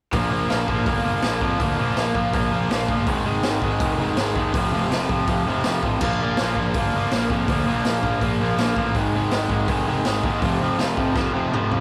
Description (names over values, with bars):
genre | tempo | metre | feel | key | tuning
punk rock | 163 BPM | 4/4 | straight | unclear | A4 = 439 Hz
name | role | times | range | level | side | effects
crunchy overdriven guitar | riff | 0.1-11.8 s | F2 to Bb3 | -28 LUFS | equal | none
overdriven electric guitar | riff | 0.1-11.8 s | F2 to Bb3 | -27 LUFS | equal | none
fuzz picked electric bass | bass | 0.1-11.8 s | F1 to F2 | -28 LUFS | equal | overdrive
raw garage drum kit | drums | 0.1-11.8 s | crash cymbal, hi-hat, kick drum, snare drum, toms | -28 LUFS | equal | none
room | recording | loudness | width
moderate small room reverb, RT60 0.6 s | rough rehearsal-room recording, warm saturation | -22 LUFS | mono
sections
0.1-11.8 A section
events
drum fill 11.2-11.8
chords
0.1 Bb5; 3.1 Ab5; 4.5 F5; 6.0 Bb5; 9.0 Ab5; 10.4 F5